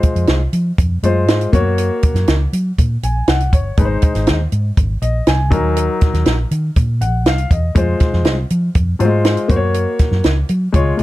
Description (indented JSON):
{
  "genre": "uptempo 1960s-style soul",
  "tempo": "121 BPM",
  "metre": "4/4",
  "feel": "straight",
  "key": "unclear",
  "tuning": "A4 = 440 Hz",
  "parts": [
    { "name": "warm grand piano", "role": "accompaniment", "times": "0.0-11.0 s", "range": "Gb3 to Ab5", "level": "-19 LUFS", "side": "left 3 dB", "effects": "plate reverb" },
    { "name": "compact cocktail drum kit", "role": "drums", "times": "0.0-11.0 s", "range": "hi-hat, kick drum, snare drum", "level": "-16 LUFS", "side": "right 1 dB", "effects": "none" },
    { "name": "vintage muted fingered electric bass", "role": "bass", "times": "0.2-11.0 s", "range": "G1 to Gb3", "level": "-16 LUFS", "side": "equal", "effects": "none" }
  ],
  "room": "light reverb",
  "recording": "dark, warm production",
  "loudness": "-13 LUFS",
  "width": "side -16 dB against mid",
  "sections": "0.0-11.0 A section",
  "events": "none",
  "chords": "0.0 Fm; 1.5 Gb; 3.8 Ab; 5.5 Ebm; 7.8 Fm; 9.5 Gb"
}